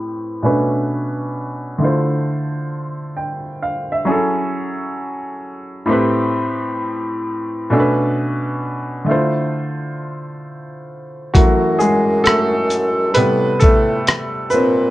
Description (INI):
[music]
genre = lo-fi hip hop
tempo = 66 BPM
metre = 4/4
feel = swing 65% on 16ths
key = unclear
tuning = A4 = 441 Hz
[part]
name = warm upright piano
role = accompaniment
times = 0.0-14.9 s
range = A2 to G5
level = -17 LUFS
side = equal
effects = low-pass filter
[part]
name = mellow bassoon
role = bass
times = 11.3-14.9 s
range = F#2 to A#2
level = -18 LUFS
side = equal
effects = none
[part]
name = dusty soul sampler-style drum kit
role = drums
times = 11.3-14.8 s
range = hi-hat, kick drum, rim click, shaker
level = -14 LUFS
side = equal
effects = none
[sound]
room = moderate studio reverb, RT60 0.6 s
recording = cassette tape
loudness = -16 LUFS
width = side -16 dB against mid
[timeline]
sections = 0.0-11.4 A section; 11.4-14.9 B section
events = filter sweep on upright piano 0.0-11.4; upright piano solo 11.4-14.9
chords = 0.4 Bm9; 1.8 Dm9; 4.1 F#m9; 5.9 Am9; 7.7 Bm9; 9.1 Dm9; 11.4 F#m9; 13.2 Am9